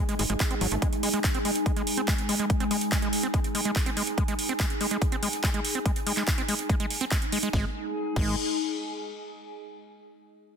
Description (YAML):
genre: psychedelic trance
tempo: 143 BPM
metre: 4/4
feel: straight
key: unclear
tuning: A4 = 440 Hz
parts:
  - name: overtone-sweeping drone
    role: sustained chords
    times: 0.0-7.6 s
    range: G#3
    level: -35 LUFS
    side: left 1 dB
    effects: chorus, built-in reverb, sidechain pumping
  - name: overdriven acid bass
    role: riff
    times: 0.0-8.4 s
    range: F#3 to B#3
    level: -32 LUFS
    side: right 1 dB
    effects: distortion, auto-pan, sidechain pumping, tape echo
  - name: warbly tape-like pad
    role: texture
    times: 0.0-9.2 s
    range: D#4 to G#5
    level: -33 LUFS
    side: left 1 dB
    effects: chorus, built-in reverb, phaser, sidechain pumping
  - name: techno drum kit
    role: drums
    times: 0.1-8.2 s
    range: crash cymbal, handclaps, hi-hat, snare drum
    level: -31 LUFS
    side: right 2 dB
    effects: none
  - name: tight sequencer bass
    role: bass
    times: 0.2-0.8, 7.5-8.4 s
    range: G#1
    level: -30 LUFS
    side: equal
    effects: tube saturation
  - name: electronic kick drum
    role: drums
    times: 0.4-8.2 s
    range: none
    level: -27 LUFS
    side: equal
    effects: none
room: light reverb, digital ambience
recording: dense, heavily limited modern master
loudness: -24 LUFS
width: side -7 dB against mid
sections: 0.0-7.5 A section; 7.5-9.2 B section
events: filter sweep on acid bass 0.0-7.5; filter sweep on synth drone 0.0-7.5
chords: 0.0 G#5